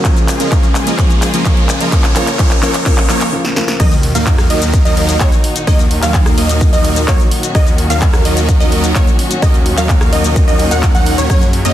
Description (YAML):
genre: EDM, festival progressive house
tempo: 128 BPM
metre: 4/4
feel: straight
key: Eb minor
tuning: A4 = 436 Hz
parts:
  - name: dark grand piano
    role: accompaniment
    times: 0.0-3.8 s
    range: Db3 to F4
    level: -21 LUFS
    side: left 2 dB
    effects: sidechain pumping, digital delay
  - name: warm symphonic string section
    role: sustained chords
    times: 0.0-11.7 s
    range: Bb2 to Bb4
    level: -22 LUFS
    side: left 1 dB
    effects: sidechain pumping
  - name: supersaw chords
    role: riff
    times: 0.0-11.7 s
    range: F3 to Gb5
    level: -18 LUFS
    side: right 1 dB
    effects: phaser, sidechain pumping, digital delay
  - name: big-room dance drum kit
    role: drums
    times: 0.0-11.7 s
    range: crash cymbal, handclaps, hi-hat, rim click, shaker, snare drum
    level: -20 LUFS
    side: left 1 dB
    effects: small room ambience, soft clipping on snare
  - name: electronic kick drum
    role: drums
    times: 0.0-11.4 s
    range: none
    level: -12 LUFS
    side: equal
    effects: small room ambience
  - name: riser and sub drop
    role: sound effects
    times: 0.0-5.7 s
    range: none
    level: -24 LUFS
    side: equal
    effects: none
  - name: wide unison pluck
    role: arpeggios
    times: 3.8-11.7 s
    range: Db5 to Gb5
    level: -21 LUFS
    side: right 1 dB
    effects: cassette tape, sidechain pumping, digital delay
  - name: wide detuned saw bass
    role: bass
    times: 3.8-11.7 s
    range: Eb2 to Gb2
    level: -17 LUFS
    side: equal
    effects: chorus, sidechain pumping
room: light reverb, digital ambience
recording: dense, heavily limited modern master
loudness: -10 LUFS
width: side -12 dB against mid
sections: 0.0-3.8 A section; 3.8-11.7 B section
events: build-up 0.0-3.8; drum fill 0.0-3.3, 3.4-3.8; riser 0.0-3.3; break 3.3-3.8; drop 3.8-11.7; impact 3.8-5.7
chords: 0.0 Db; 3.8 Ebm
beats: | 0.05 0.52 0.99 1.46 | 1.92 2.39 2.86 3.33 | 3.80 4.27 4.74 5.21 | 5.67 6.14 6.61 7.08 | 7.55 8.02 8.49 8.96 | 9.42 9.89 10.36 10.83 | 11.30